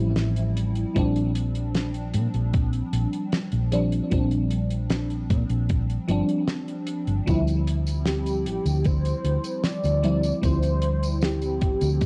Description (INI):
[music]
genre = vaporwave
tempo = 76 BPM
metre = 4/4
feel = straight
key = Bb lydian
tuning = A4 = 438 Hz
[part]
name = FM electric piano with soft pad layer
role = accompaniment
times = 0.0-12.1 s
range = F3 to E4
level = -30 LUFS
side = equal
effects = phaser, ensemble chorus, vintage 12-bit sampler grit, analog delay
[part]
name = hollow-body short-scale fingered electric bass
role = bass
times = 0.0-12.1 s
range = G1 to Bb2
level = -27 LUFS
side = equal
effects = none
[part]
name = damped 70s drum kit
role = drums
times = 0.2-12.1 s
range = hi-hat, snare drum, tambourine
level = -33 LUFS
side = equal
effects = studio reverb
[part]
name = electronic kick drum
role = drums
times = 1.0-12.1 s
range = none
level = -27 LUFS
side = equal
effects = overdrive, studio reverb
[part]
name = warm velvety synth lead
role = melody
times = 8.1-12.1 s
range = G4 to D5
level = -31 LUFS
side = equal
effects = chorus, tape echo
[sound]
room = small room ambience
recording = dry, gritty hardware recording, cassette tape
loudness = -24 LUFS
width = mono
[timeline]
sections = 0.0-12.1 A section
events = none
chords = 0.0 Dm11 (rootless); 1.0 Bb69; 7.3 Dm11